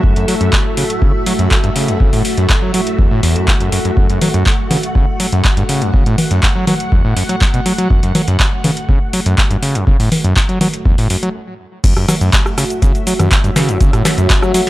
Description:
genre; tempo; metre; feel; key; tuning
acid house; 122 BPM; 4/4; straight; F# minor; A4 = 440 Hz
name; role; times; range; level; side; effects
string machine, full ensemble; sustained chords; 0.0-14.7 s; A3 to F#5; -21 LUFS; equal; ensemble chorus, sidechain pumping
overdriven acid bass; riff; 0.0-14.6 s; E2 to A3; -16 LUFS; equal; tube saturation, sidechain pumping, tape echo
electronic kick drum; drums; 0.0-14.4 s; none; -14 LUFS; equal; none
booming analog drum machine; drums; 0.2-14.7 s; cabasa, congas, crash cymbal, handclaps, hi-hat, rim click, snare drum; -17 LUFS; equal; none
granular cloud pad; texture; 12.6-14.7 s; F#4 to F#5; -21 LUFS; equal; built-in reverb, sidechain pumping
room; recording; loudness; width
little or no reverb; dry, gritty hardware recording; -11 LUFS; side -16 dB against mid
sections
0.0-11.8 A section; 11.8-14.7 B section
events
stop 11.3-11.8; drop 11.8-14.7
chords
0.0 F#m7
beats
| 0.04 0.53 1.02 1.51 | 2.00 2.50 2.99 3.48 | 3.97 4.46 4.95 5.45 | 5.94 6.43 6.92 7.41 | 7.90 8.40 8.89 9.38 | 9.87 10.36 10.86 11.35 | 11.84 12.33 12.82 13.31 | 13.81 14.30

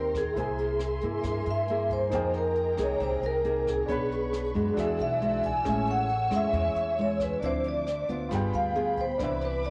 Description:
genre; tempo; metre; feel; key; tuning
bossa nova; 136 BPM; 4/4; straight; unclear; A4 = 443 Hz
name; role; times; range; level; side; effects
vibraphone with medium mallets; melody; 0.0-9.7 s; Ab4 to G#5; -31 LUFS; equal; cassette tape
nylon-string guitar; accompaniment; 0.0-9.7 s; A2 to C#5; -35 LUFS; equal; cassette tape
warm concert grand piano; accompaniment; 0.0-9.7 s; A3 to B5; -40 LUFS; equal; cassette tape
warm studio string section; sustained chords; 0.0-9.7 s; Ab4 to E6; -43 LUFS; equal; cassette tape
upright bass; bass; 0.0-9.7 s; G1 to G2; -37 LUFS; equal; none
jazz brush drum kit; drums; 0.1-9.7 s; hi-hat, kick drum, rim click; -44 LUFS; equal; cassette tape
room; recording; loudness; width
moderate spring reverb, RT60 1.2 s; home recording on cassette, nothing above 11.0 kHz; -28 LUFS; mono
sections
0.0-9.7 A section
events
none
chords
0.4 C7b13; 2.1 Fm11; 3.9 Bmadd9; 4.8 E9; 5.7 Amaj7; 7.4 Dm9; 8.3 G7b9; 9.2 Cmaj9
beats
| 0.36 0.80 1.24 1.68 | 2.12 2.56 3.00 3.44 | 3.89 4.33 4.77 5.21 | 5.65 6.09 6.54 6.98 | 7.42 7.86 8.31 8.75 | 9.19 9.63

